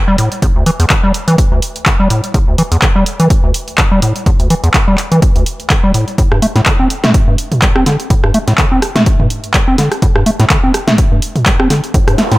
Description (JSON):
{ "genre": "acid house", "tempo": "125 BPM", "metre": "4/4", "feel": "swing 55% on 16ths", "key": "E minor", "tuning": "A4 = 440 Hz", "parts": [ { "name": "acid bass, square", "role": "riff", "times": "0.1-12.4 s", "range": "D2 to C4", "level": "-13 LUFS", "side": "equal", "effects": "sidechain pumping, digital delay" }, { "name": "punchy analog drum machine", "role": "drums", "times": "0.2-12.4 s", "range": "handclaps, hi-hat, rim click, snare drum, toms", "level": "-16 LUFS", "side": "equal", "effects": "none" }, { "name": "electronic kick drum", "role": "drums", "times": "0.4-12.0 s", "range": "none", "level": "-12 LUFS", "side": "equal", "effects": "none" }, { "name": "noise sweep", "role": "sound effects", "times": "12.0-12.4 s", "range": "none", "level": "-18 LUFS", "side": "right 1 dB", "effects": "none" } ], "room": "light reverb, digital ambience", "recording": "none", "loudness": "-9 LUFS", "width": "side -19 dB against mid", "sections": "0.0-12.4 A section", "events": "filter sweep on acid bass 0.0-12.4; noise sweep 12.0-12.4", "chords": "none" }